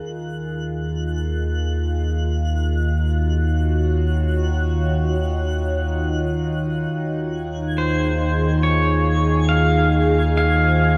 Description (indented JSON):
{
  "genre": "ambient",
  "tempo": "70 BPM",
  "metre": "4/4",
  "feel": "straight",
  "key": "Eb dorian",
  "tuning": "A4 = 440 Hz",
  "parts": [
    { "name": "evolving wavetable pad", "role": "sustained chords", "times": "0.0-11.0 s", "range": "Eb3 to Db5", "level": "-24 LUFS", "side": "equal", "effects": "chorus, built-in reverb, phaser, shimmer reverb" },
    { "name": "warm sub bass", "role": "bass", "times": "0.0-11.0 s", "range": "Eb2", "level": "-24 LUFS", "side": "equal", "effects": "none" },
    { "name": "twinkling granular texture", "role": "texture", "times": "0.0-11.0 s", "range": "Gb6 to Ab6", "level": "-37 LUFS", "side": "equal", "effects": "built-in reverb, shimmer reverb" },
    { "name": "pedal steel guitar", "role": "melody", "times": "7.8-11.0 s", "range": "C5 to F5", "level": "-24 LUFS", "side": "equal", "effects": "shimmer reverb" }
  ],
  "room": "wet cathedral reverb, RT60 6.1 s",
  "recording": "worn, warbling old tape, cassette tape, warbly pitch drift",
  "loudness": "-20 LUFS",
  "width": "mono",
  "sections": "0.0-11.0 A section",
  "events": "fade-in on ambient pad 0.0-11.0; fade-in on synth texture 0.0-11.0",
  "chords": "0.1 Ebm7; 6.9 Dbmaj7/Eb"
}